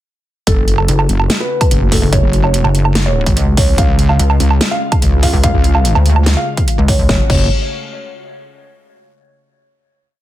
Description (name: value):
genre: heavy wobble dubstep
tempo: 145 BPM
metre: 4/4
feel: half-time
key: F# harmonic minor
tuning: A4 = 440 Hz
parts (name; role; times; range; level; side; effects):
- felt-muted upright piano; melody; 0.5-7.5 s; A4 to E#5; -21 LUFS; equal; dub echo
- lush unison pad; sustained chords; 0.5-7.3 s; C#3 to F#4; -24 LUFS; equal; chorus, sidechain pumping
- wobble bass; bass; 0.5-7.5 s; F#1 to C#2; -13 LUFS; equal; chorus, overdrive
- dubstep drum kit; drums; 0.5-7.4 s; crash cymbal, hi-hat, snare drum, woodblock; -18 LUFS; right 2 dB; studio reverb
- electronic kick drum; drums; 0.5-7.4 s; none; -14 LUFS; equal; studio reverb
- pulsing pluck wobble bass; bass; 0.9-7.1 s; F#1 to D2; -12 LUFS; equal; chorus, overdrive
room: little or no reverb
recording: dense, heavily limited modern master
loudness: -10 LUFS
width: side -14 dB against mid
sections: 0.5-7.1 drop; 7.1-8.7 final chord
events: drop 0.5-7.1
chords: 0.5 F#m; 3.8 C#; 7.1 F#m